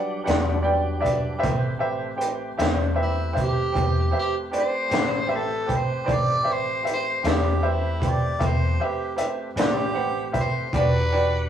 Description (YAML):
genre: slow blues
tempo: 52 BPM (dotted quarters)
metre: 12/8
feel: straight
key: unclear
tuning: A4 = 440 Hz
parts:
  - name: bright upright piano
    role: accompaniment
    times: 0.0-11.4 s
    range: F#4 to G5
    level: -26 LUFS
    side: right 2 dB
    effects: none
  - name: tonewheel organ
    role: sustained chords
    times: 0.0-11.5 s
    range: F#3 to F#5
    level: -35 LUFS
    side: equal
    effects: slow rotary speaker, overdrive, chorus vibrato
  - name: vintage muted fingered electric bass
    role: bass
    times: 0.3-11.5 s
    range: E1 to E2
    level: -27 LUFS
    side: left 1 dB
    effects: none
  - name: crunchy breakbeat drum kit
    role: drums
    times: 0.3-10.9 s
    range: hi-hat, kick drum, snare drum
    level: -26 LUFS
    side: left 1 dB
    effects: none
  - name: growling tenor saxophone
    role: melody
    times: 3.0-11.5 s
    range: E4 to D5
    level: -26 LUFS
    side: equal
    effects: none
room: moderate stone room reverb, RT60 1.4 s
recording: rough rehearsal-room recording, small room ambience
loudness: -21 LUFS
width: side -9 dB against mid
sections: 0.0-11.5 A section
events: none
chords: 0.0 Em7; 1.4 Am7; 10.7 Em7